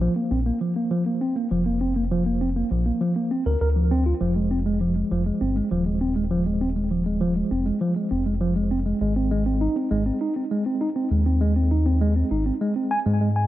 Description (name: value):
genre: IDM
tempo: 100 BPM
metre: 4/4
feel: straight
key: unclear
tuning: A4 = 439 Hz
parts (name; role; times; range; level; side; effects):
- mellow tine electric piano; arpeggios; 0.0-13.4 s; F3 to Ab5; -23 LUFS; right 1 dB; medium stereo tremolo, digital delay
- round analog bass; bass; 0.0-13.5 s; Eb1 to Ab2; -24 LUFS; equal; none
room: light reverb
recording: none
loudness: -21 LUFS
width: side -14 dB against mid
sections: 0.0-13.5 A section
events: none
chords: 0.0 Bbadd9; 4.2 Fm; 9.0 Ab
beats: 0.01 0.61 1.21 | 1.81 2.41 3.01 3.61 | 4.21 4.81 5.41 6.01 | 6.61 7.21 7.81 8.41 | 9.01 9.61 10.21 10.81 | 11.41 12.01 12.61 13.21